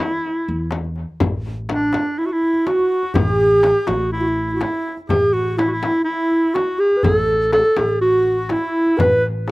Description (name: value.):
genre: Arabic maqam ensemble.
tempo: 123 BPM.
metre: 4/4.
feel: straight.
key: A maqam rast.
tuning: A4 = 440 Hz.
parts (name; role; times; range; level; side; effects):
breathy clarinet; melody; 0.0-9.2 s; D4 to B4; -18 LUFS; equal; none.
mellow hollow alto flute; second line; 0.0-9.5 s; D4 to B4; -20 LUFS; right 2 dB; none.
upright bass; bass; 0.5-9.5 s; A1 to E2; -25 LUFS; equal; none.
darbuka; percussion; 0.7-9.5 s; none; -25 LUFS; left 1 dB; none.
frame drum; percussion; 0.7-9.1 s; none; -25 LUFS; left 4 dB; slapback echo.
room: little or no reverb.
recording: recorded outdoors, with no room sound.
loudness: -16 LUFS.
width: side -20 dB against mid.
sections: 0.0-1.2 A section; 1.2-9.5 B section.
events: none.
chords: none.